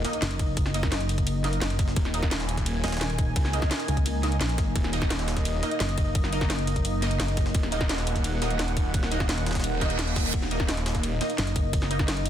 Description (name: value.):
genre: dark technical drum and bass.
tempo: 172 BPM.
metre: 4/4.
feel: straight.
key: Eb minor.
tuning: A4 = 439 Hz.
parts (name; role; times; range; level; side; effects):
dark analog pad; sustained chords; 0.0-12.3 s; Bb3 to Ab5; -33 LUFS; equal; chorus, sidechain pumping.
orchestra-hit-like synth stab; stabs; 0.0-12.0 s; Bb3 to Eb5; -34 LUFS; right 2 dB; built-in reverb, phaser, dub echo.
snarling distorted saw bass; bass; 0.0-11.2 s; Eb1 to Db2; -29 LUFS; equal; distortion, overdrive, sidechain pumping.
drum and bass drum kit; drums; 0.0-12.3 s; crash cymbal, hi-hat, snare drum; -32 LUFS; equal; none.
jungle sampler-style drum kit; drums; 0.0-12.3 s; ride cymbal, snare drum; -38 LUFS; equal; none.
impact and reverse cymbal; sound effects; 0.0-0.6, 9.8-10.3 s; none; -35 LUFS; right 3 dB; none.
pulsing pluck wobble bass; bass; 0.2-7.5, 11.4-12.3 s; Eb1 to Db2; -27 LUFS; equal; chorus.
electronic kick drum; drums; 0.4-12.1 s; none; -26 LUFS; equal; none.
room: little or no reverb.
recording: dense, heavily limited modern master.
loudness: -24 LUFS.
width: side -10 dB against mid.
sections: 0.0-12.3 A section.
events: impact 0.0-0.6; reverse cymbal 9.8-10.3.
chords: 0.0 Eb5.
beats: 0.22 | 0.57 0.92 1.27 1.62 | 1.97 2.31 2.66 3.01 | 3.36 3.71 4.06 4.41 | 4.75 5.10 5.45 5.80 | 6.15 6.50 6.85 7.20 | 7.55 7.89 8.24 8.59 | 8.94 9.29 9.64 9.99 | 10.34 10.69 11.03 11.38 | 11.73 12.08.